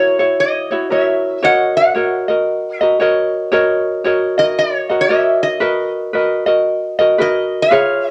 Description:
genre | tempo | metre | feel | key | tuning
Hawaiian | 115 BPM | 4/4 | swing 63% on 8ths | B major | A4 = 440 Hz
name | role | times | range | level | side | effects
metal-body resonator slide guitar | melody | 0.0-8.1 s | C#5 to F#5 | -18 LUFS | equal | cassette tape
ukulele | accompaniment | 0.0-8.1 s | E4 to D#5 | -17 LUFS | equal | none
room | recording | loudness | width
moderate studio reverb, RT60 0.5 s | home recording on cassette | -15 LUFS | mono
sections
0.0-8.1 A section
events
none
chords
0.0 F#7; 1.4 F#6; 5.6 Bmaj7/F#

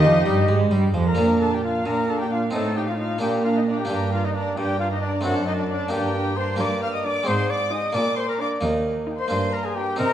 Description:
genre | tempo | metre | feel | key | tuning
classical, baroque-style concerto movement with solo episodes | 88 BPM (dotted quarters) | 6/8 | straight | Bb major | A4 = 435 Hz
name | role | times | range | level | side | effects
warm chamber violin section | melody | 0.0-9.9 s | Eb5 to Bb5 | -33 LUFS | left 4 dB | none
warm trumpet | melody | 0.0-10.1 s | D4 to F5 | -27 LUFS | left 1 dB | none
dark studio violin section | second line | 0.0-10.1 s | D5 to F6 | -29 LUFS | left 1 dB | none
harpsichord | accompaniment | 0.0-10.1 s | Eb2 to G4 | -26 LUFS | right 1 dB | none
warm chamber viola section | accompaniment | 0.0-9.9 s | D4 to G4 | -30 LUFS | equal | none
rich chamber double bass section | bass | 0.0-1.2 s | F2 to Ab2 | -23 LUFS | right 2 dB | none
warm chamber cello section | bass | 0.0-10.1 s | Eb2 to Ab3 | -25 LUFS | right 2 dB | none
room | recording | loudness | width
wet recital hall reverb, RT60 1.8 s | none | -20 LUFS | side -10 dB against mid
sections
0.0-1.2 A section; 1.2-10.1 B section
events
none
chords
0.0 Eb; 1.2 Bb; 2.5 F7/A; 3.2 Bb; 3.9 Gm; 5.3 D7/F#; 5.9 Gm; 7.3 Ab; 8.0 Bb; 8.6 Eb; 9.3 Gm

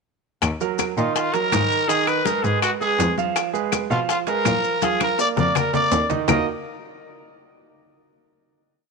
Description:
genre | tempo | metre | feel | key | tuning
latin, salsa | 164 BPM | 4/4 | straight | Eb harmonic minor | A4 = 439 Hz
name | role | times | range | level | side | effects
muted cello | bass | 0.4-6.4 s | Eb2 to Cb3 | -24 LUFS | left 2 dB | none
bongos | percussion | 0.4-6.4 s | none | -30 LUFS | left 16 dB | none
claves | percussion | 0.4-6.4 s | none | -28 LUFS | left 13 dB | none
congas | percussion | 0.4-6.4 s | none | -28 LUFS | left 13 dB | none
maracas | percussion | 0.4-6.4 s | none | -33 LUFS | left 19 dB | none
timbales | percussion | 0.4-6.4 s | none | -31 LUFS | right 14 dB | none
clear grand piano | accompaniment | 0.6-6.5 s | Eb3 to F5 | -24 LUFS | right 12 dB | none
growling trumpet | melody | 1.0-6.5 s | F4 to Eb5 | -22 LUFS | left 1 dB | none
room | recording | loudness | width
light reverb, small room ambience | 1960s-style stereo with parts hard left and right | -18 LUFS | side -4 dB against mid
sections
0.4-6.3 verse; 6.3-7.8 final chord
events
drum fill 4.8-6.3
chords
0.4 Ebm; 1.9 Abm; 3.4 Fdim; 4.8 Bb; 6.3 Ebmadd9

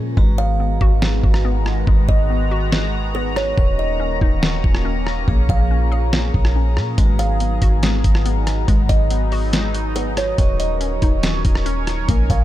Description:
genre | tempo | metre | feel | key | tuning
hip hop, atmospheric cloud-rap | 141 BPM | 4/4 | half-time | G# dorian | A4 = 441 Hz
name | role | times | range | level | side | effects
sweeping resonant pad | sustained chords | 0.0-12.4 s | D#3 to A#5 | -26 LUFS | left 1 dB | chorus, sidechain pumping
soft 808-style bass | bass | 0.0-12.4 s | D#1 to A#2 | -20 LUFS | equal | none
vibraphone with hard mallets | texture | 0.0-12.4 s | C#4 to C#6 | -36 LUFS | right 3 dB | none
hollow square pluck | arpeggios | 0.2-12.4 s | D#3 to G#4 | -30 LUFS | left 6 dB | chorus, digital delay
trip hop sampler-style drum kit | drums | 0.2-12.4 s | hi-hat, kick drum, rim click, snare drum | -18 LUFS | equal | none
kalimba | melody | 0.4-12.4 s | B4 to E#5 | -26 LUFS | right 3 dB | digital delay
room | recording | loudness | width
digital ambience | none | -15 LUFS | side -14 dB against mid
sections
0.2-12.4 A section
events
hi-hats muted 0.2-7.0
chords
0.2 G#m9; 3.6 D#m7; 5.3 A#m7; 7.0 G#m9; 10.4 D#m7

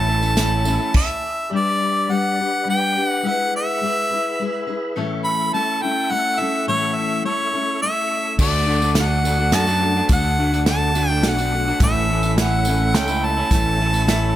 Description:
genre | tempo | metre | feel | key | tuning
folk rock and heartland rock | 105 BPM | 3/4 | straight | A mixolydian | A4 = 440 Hz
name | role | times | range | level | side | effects
clear harmonica | melody | 0.0-14.4 s | C#5 to B5 | -21 LUFS | equal | dub echo
picked steel-string acoustic guitar | accompaniment | 0.0-14.4 s | A2 to B4 | -25 LUFS | left 4 dB | dub echo
tonewheel organ | sustained chords | 0.0-14.4 s | G4 to D6 | -33 LUFS | right 1 dB | slow rotary speaker, chorus vibrato
electric guitar through a small old amp | riff | 0.0-0.9, 8.4-14.4 s | A2 to F#4 | -26 LUFS | right 3 dB | dub echo
fingered electric bass | bass | 0.0-0.8, 8.4-14.4 s | A1 to F#2 | -21 LUFS | equal | none
tambourine | percussion | 0.2-0.8, 8.4-14.2 s | none | -35 LUFS | right 6 dB | none
natural country drum kit | drums | 0.4-1.1, 8.4-14.2 s | crash cymbal, hi-hat, kick drum, snare drum | -20 LUFS | equal | none
dark upright piano | second line | 14.1-14.4 s | E5 | -28 LUFS | right 5 dB | none
room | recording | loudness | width
light reverb, studio ambience | echo-heavy mix | -17 LUFS | side -13 dB against mid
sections
0.0-1.5 A section; 1.5-14.4 A section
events
none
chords
0.0 A; 1.5 G; 3.2 E/G#; 5.0 A; 8.4 D; 11.8 A

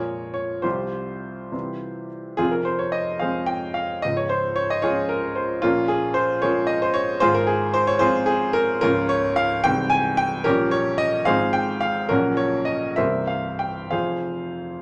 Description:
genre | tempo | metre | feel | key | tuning
classical, romantic character piece for solo piano | 62-76 BPM (dotted quarters) | 6/8 | rubato | F minor | A4 = 440 Hz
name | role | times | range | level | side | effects
clear grand piano | solo | 0.0-14.8 s | C1 to Ab5 | -23 LUFS | equal | none
room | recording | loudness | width
moderate large studio reverb, RT60 0.9 s | none | -22 LUFS | mono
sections
0.0-2.4 A section; 2.4-14.8 B section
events
none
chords
0.0 Bbm7; 0.6 Csus4; 1.5 C; 2.4 Fm; 4.0 Db; 5.6 Bbm7; 7.2 Fm/Ab; 8.8 Bbm/Db; 9.6 Ab/C; 10.5 Gdim/Bb; 11.3 Fm/Ab; 12.1 Gb/Bb; 13.0 C5; 13.9 Fm

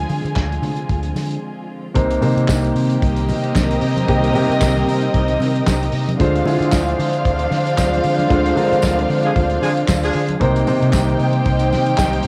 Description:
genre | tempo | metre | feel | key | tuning
disco | 114 BPM | 4/4 | swing 56% on 16ths | C minor | A4 = 440 Hz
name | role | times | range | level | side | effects
dark studio string section | second line | 0.0-12.3 s | C4 to Ab5 | -24 LUFS | equal | cassette tape
warm studio string section | sustained chords | 0.0-12.3 s | D3 to G4 | -28 LUFS | equal | cassette tape
fingered electric bass with an envelope filter | bass | 0.0-12.3 s | C2 to D3 | -23 LUFS | equal | none
warm soul drum kit | drums | 0.1-12.3 s | handclaps, hi-hat, kick drum, snare drum | -25 LUFS | equal | cassette tape
congas | percussion | 0.1-12.1 s | none | -30 LUFS | equal | none
dark concert grand piano | accompaniment | 1.9-12.3 s | C3 to C5 | -23 LUFS | equal | cassette tape
tambourine | percussion | 2.5-12.1 s | none | -36 LUFS | equal | none
mellow horn section | stabs | 9.2-10.4 s | Ab3 to Ab4 | -26 LUFS | equal | cassette tape
room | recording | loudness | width
light reverb, studio reverb | home recording on cassette | -17 LUFS | mono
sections
0.0-2.0 A section; 2.0-12.3 B section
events
break 1.4-2.0; band accent 8.3-10.4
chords
0.0 Dm7b5; 2.0 Cm7; 6.2 Dm7b5; 10.4 Cm7

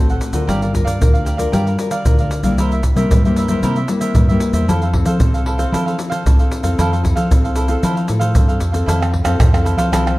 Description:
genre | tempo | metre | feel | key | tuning
samba and choro | 114 BPM | 4/4 | straight | F major | A4 = 438 Hz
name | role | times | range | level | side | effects
cavaquinho | accompaniment | 0.0-10.2 s | E4 to F#5 | -23 LUFS | right 2 dB | none
nylon-string guitar | accompaniment | 0.0-10.2 s | G2 to Bb4 | -20 LUFS | left 2 dB | none
deep dub fingered electric bass | bass | 0.0-10.2 s | G1 to F3 | -19 LUFS | equal | none
tube shaker, pandeiro, surdo and tamborim | percussion | 0.1-10.2 s | none | -17 LUFS | equal | none
room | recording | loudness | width
moderate large studio reverb, RT60 1.2 s | dark, warm production | -14 LUFS | side -18 dB against mid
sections
0.0-8.9 A section; 8.9-10.2 B section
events
none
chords
0.5 Gm7; 2.6 C7; 4.7 Fmaj7

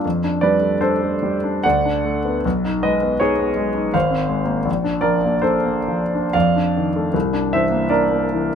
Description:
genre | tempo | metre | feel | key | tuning
classical, impressionist solo piano | 62-82 BPM | 3/4 | rubato | Bb major from 4.7 s | A4 = 440 Hz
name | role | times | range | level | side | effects
clear grand piano | solo | 0.0-8.6 s | Ab1 to F#5 | -17 LUFS | equal | none
room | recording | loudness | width
little or no reverb | close, detailed microphones | -17 LUFS | side -7 dB against mid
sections
0.0-8.6 A section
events
none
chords
0.0 F69; 1.6 D6; 2.4 B69; 3.9 Ab69; 4.7 Bbmaj7; 6.3 F6; 7.1 C9

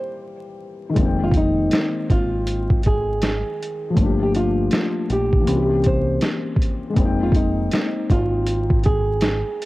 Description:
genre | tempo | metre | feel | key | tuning
lo-fi hip hop | 80 BPM | 4/4 | swing 63% on 16ths | F minor | A4 = 443 Hz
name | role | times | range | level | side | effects
nylon-string guitar | melody | 0.0-9.7 s | Eb4 to C5 | -24 LUFS | right 2 dB | low-pass filter
felt-muted upright piano | accompaniment | 0.0-9.7 s | Eb3 to G5 | -24 LUFS | left 3 dB | cassette tape, low-pass filter
deep dub fingered electric bass | bass | 1.0-9.4 s | F1 to C2 | -24 LUFS | equal | none
boom bap sampler-style drum kit | drums | 1.0-9.7 s | hi-hat, kick drum, snare drum | -20 LUFS | equal | cassette tape
room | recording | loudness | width
small room reverb | home recording on cassette, vinyl crackle | -17 LUFS | side -18 dB against mid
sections
0.0-9.7 A section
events
none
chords
0.0 C7; 1.0 Fm11; 4.0 Gm7; 5.5 C7b9; 7.0 Fm11

